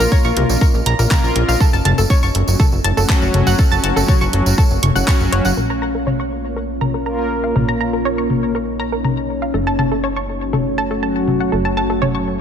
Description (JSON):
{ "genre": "melodic techno", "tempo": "121 BPM", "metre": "4/4", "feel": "straight", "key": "Bb harmonic minor", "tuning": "A4 = 440 Hz", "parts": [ { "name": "deep dark ambient pad", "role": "sustained chords", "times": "0.0-12.4 s", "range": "A3 to F5", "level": "-23 LUFS", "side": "equal", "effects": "chorus, built-in reverb, vintage 12-bit sampler grit, sidechain pumping" }, { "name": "analog pluck", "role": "arpeggios", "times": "0.0-12.2 s", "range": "A4 to Db6", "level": "-22 LUFS", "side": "right 1 dB", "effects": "chorus, sidechain pumping, ping-pong delay" }, { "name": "brassy analog pad", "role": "stabs", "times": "0.0-12.4 s", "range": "Gb3 to Bb4", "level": "-22 LUFS", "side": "left 1 dB", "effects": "chorus, tremolo, sidechain pumping, ping-pong delay" }, { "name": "plucky analog bass", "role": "bass", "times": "0.0-12.4 s", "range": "Gb1 to C2", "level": "-20 LUFS", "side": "equal", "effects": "sidechain pumping" }, { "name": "tambourine", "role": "percussion", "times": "0.0-5.5 s", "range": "none", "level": "-28 LUFS", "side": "right 5 dB", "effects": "none" }, { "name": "electronic kick drum", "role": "drums", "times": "0.1-5.2 s", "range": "none", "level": "-14 LUFS", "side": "equal", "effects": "none" }, { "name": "house drum kit", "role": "drums", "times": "0.4-12.1 s", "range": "handclaps, hi-hat, toms", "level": "-22 LUFS", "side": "left 2 dB", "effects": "low-pass filter on toms, low-pass filter on hats, low-pass filter on snare, low-pass filter on room" } ], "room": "light reverb", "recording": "none", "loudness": "-14 LUFS", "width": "side -8 dB against mid", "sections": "0.0-5.6 A section; 5.6-12.4 B section", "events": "none", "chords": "0.0 Bbm; 1.6 Gbm; 5.6 Bbm; 9.5 Gbm" }